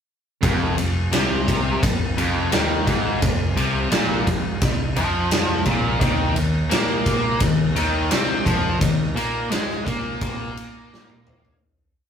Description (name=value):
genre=classic rock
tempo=86 BPM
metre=4/4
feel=straight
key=F minor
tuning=A4 = 442 Hz
part: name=bright tonewheel organ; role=sustained chords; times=0.4-11.6 s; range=C4 to F5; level=-38 LUFS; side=right 3 dB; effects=none
part: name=distorted electric guitar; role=riff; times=0.4-11.6 s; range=F2 to C4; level=-29 LUFS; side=right 6 dB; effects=overdrive
part: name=overdriven electric guitar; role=riff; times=0.4-11.6 s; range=F2 to C4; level=-24 LUFS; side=left 4 dB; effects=none
part: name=modern bright picked electric bass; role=bass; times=0.4-11.6 s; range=F1 to C3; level=-27 LUFS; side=right 1 dB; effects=none
part: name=big rock drum kit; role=drums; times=0.4-11.6 s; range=kick drum, ride cymbal, snare drum, toms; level=-22 LUFS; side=equal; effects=none
room=moderate studio reverb, RT60 0.6 s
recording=rough rehearsal-room recording, tube saturation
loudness=-18 LUFS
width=side -8 dB against mid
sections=0.4-11.6 riff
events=fade-out 8.8-11.6; drum fill 10.9-11.6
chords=0.4 Fm; 6.0 Eb5